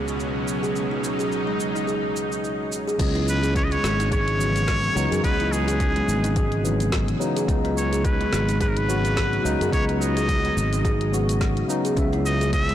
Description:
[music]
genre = organic downtempo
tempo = 107 BPM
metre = 4/4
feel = swing 57% on 16ths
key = C# minor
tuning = A4 = 440 Hz
[part]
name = bright tine electric piano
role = accompaniment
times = 0.0-12.7 s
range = C#3 to E5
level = -28 LUFS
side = left 2 dB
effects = analog chorus, sidechain pumping, ping-pong delay
[part]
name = bowed-like drone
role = sustained chords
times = 0.0-3.0 s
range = C#2 to D#4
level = -28 LUFS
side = equal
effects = built-in reverb, sidechain pumping
[part]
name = deep house drum kit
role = drums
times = 0.1-12.7 s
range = cabasa, crash cymbal, hi-hat, snare drum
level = -32 LUFS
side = equal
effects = soft clipping on snare
[part]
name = kalimba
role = arpeggios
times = 0.6-12.7 s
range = G#3 to G#4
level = -28 LUFS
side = right 2 dB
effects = ping-pong delay
[part]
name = sustaining fretless electric bass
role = bass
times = 3.0-12.7 s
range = G#1 to F#2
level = -24 LUFS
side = equal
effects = analog chorus, sidechain pumping
[part]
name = electronic kick drum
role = drums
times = 3.0-12.7 s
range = none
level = -25 LUFS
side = equal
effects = none
[part]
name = trumpet with straight mute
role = melody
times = 3.3-12.7 s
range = G#4 to E5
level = -27 LUFS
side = equal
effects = ping-pong delay
[sound]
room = light reverb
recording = blown-out, overdriven recording, overdrive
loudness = -20 LUFS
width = side -11 dB against mid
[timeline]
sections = 0.0-3.0 A section; 3.0-12.7 B section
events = none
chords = 0.0 B/C#; 3.0 C#m7; 7.5 B; 12.0 C#m7

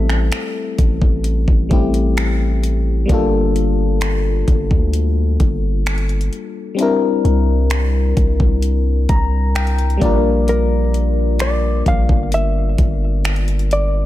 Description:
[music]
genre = contemporary R&B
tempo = 65 BPM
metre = 4/4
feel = straight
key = G dorian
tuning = A4 = 442 Hz
[part]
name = hollow-body jazz guitar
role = melody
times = 0.0-2.6, 10.5-14.1 s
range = Bb4 to F5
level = -22 LUFS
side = right 1 dB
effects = ping-pong delay
[part]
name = FM electric piano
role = accompaniment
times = 0.0-14.1 s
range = G3 to Bb5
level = -20 LUFS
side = left 4 dB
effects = chorus
[part]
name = long sustained 808-style bass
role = bass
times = 0.0-14.1 s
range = G1 to D2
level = -17 LUFS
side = equal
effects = none
[part]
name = smooth R&B drum kit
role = drums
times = 0.1-13.9 s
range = finger snaps, hi-hat, kick drum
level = -18 LUFS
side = equal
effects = none
[sound]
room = digital ambience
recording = none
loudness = -14 LUFS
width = side -14 dB against mid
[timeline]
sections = 0.0-14.1 A section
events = FM electric piano fill 8.6-10.5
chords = 0.0 Am7; 3.1 Gm9; 6.8 C9; 10.0 Gm7

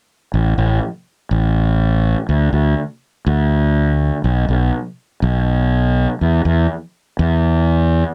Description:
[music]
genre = rock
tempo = 122 BPM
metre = 4/4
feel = straight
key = unclear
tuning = A4 = 440 Hz
[part]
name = fuzz fingered electric bass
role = bass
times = 0.3-8.0 s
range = A1 to E2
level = -16 LUFS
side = equal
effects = overdrive
[sound]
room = little or no reverb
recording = none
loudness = -17 LUFS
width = mono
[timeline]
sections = 0.3-8.1 A section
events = none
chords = none

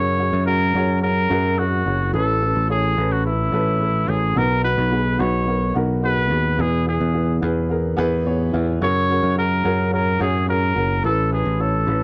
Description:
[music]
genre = piano-driven pop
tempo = 108 BPM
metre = 4/4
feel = straight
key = unclear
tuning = A4 = 439 Hz
[part]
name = clear trumpet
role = melody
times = 0.0-12.0 s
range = E4 to C#5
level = -24 LUFS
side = equal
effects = slapback echo
[part]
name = dark upright piano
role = accompaniment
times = 0.0-12.0 s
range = A2 to G#5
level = -26 LUFS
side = equal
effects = none
[part]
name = picked electric bass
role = bass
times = 0.0-12.0 s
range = F#1 to F#2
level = -24 LUFS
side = equal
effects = none
[sound]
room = light reverb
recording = dry, close 1970s-style studio recording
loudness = -20 LUFS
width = mono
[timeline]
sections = 0.0-12.0 A section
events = upright piano fill 7.7-8.8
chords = 0.0 F#add9; 2.1 Aadd9; 4.4 B; 6.6 E; 8.8 F#add9; 11.0 Aadd9

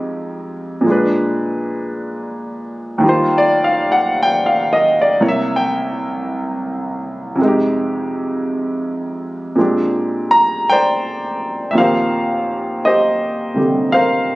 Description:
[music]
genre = jazz ballad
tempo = 55 BPM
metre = 4/4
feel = swing 66% on 8ths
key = Eb major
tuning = A4 = 440 Hz
[part]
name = clear concert grand piano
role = solo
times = 0.0-14.4 s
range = C2 to Bb5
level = -15 LUFS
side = equal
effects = none
[sound]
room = moderate large studio reverb, RT60 0.9 s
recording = recorded on a phone in the room, club reverb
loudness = -15 LUFS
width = side -19 dB against mid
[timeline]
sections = 0.0-11.7 A section; 11.7-14.4 B section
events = none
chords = 0.0 Fm9; 0.9 Bb7b9; 3.0 Eb69; 5.2 C7b9; 7.4 Fm7; 9.6 Bb13; 11.7 Eb69

